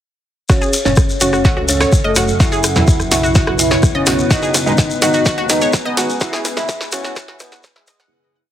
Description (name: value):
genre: melodic techno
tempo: 126 BPM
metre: 4/4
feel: straight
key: F# dorian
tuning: A4 = 438 Hz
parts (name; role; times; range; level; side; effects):
- expressive synth lead; melody; 0.5-8.0 s; G#3 to E4; -21 LUFS; equal; wide subtle chorus, sidechain pumping, digital delay
- dark detuned synth bell; second line; 0.5-8.0 s; G#4 to E5; -23 LUFS; left 1 dB; chorus, sidechain pumping, digital delay
- dark analog pad; sustained chords; 1.3-8.1 s; A3 to G#4; -29 LUFS; left 3 dB; chorus, sidechain pumping
- analog pluck; arpeggios; 0.5-8.1 s; E4 to F#5; -22 LUFS; right 1 dB; chorus, sidechain pumping, digital delay
- gritty driven synth bass; bass; 0.5-8.0 s; E1 to E2; -24 LUFS; equal; sidechain pumping
- analog drone; drone; 1.8-8.2 s; F#2 to C#3; -26 LUFS; equal; chorus, sidechain pumping
- electronic kick drum; drums; 0.5-7.7 s; none; -14 LUFS; equal; overdrive
- punchy analog drum machine; drums; 0.5-8.1 s; congas, hi-hat, rim click, snare drum; -20 LUFS; equal; high-pass filter on snare, sidechain pumping on hats, high-pass filter on hats, sidechain pumping on perc, high-pass filter on perc
- shekere; percussion; 0.5-8.1 s; none; -22 LUFS; left 3 dB; none
- warbly tape-like pad; texture; 1.2-8.1 s; C#4 to G#5; -25 LUFS; left 1 dB; chorus, built-in reverb, phaser, sidechain pumping
- synth brass stab; stabs; 0.9-6.6 s; A2 to E4; -23 LUFS; right 3 dB; chorus, sidechain pumping, digital delay
room: light reverb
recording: heavily compressed radio sound, high-pass filter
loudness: -12 LUFS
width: side -11 dB against mid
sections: 0.5-8.1 build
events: build-up 0.5-8.1; drum fill 0.5-8.1; filter sweep on analog synth pad 0.5-8.1; filter sweep 0.5-8.1; fade-out 5.6-8.1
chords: 0.5 F#m; 2.4 Bsus4; 4.3 G#m; 6.2 E